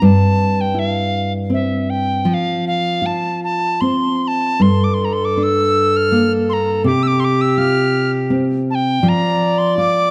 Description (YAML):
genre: celtic folk, Celtic slow air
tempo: 76-84 BPM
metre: 3/4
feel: rubato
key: unclear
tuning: A4 = 440 Hz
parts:
  - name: bright wooden whistle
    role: melody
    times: 0.0-10.1 s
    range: E5 to F6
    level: -22 LUFS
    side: equal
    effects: none
  - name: nylon-string guitar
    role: accompaniment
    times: 0.0-10.1 s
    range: G2 to F4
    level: -19 LUFS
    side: equal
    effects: none
  - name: clear alto saxophone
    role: second line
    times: 4.6-10.1 s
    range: G4 to D5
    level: -21 LUFS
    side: equal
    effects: none
room: moderate scoring stage reverb, RT60 1.6 s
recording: dark, warm production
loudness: -17 LUFS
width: mono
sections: 0.0-10.1 A section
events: none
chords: 0.0 C/G; 2.3 F5; 4.6 Gm; 6.9 Csus4; 9.0 F5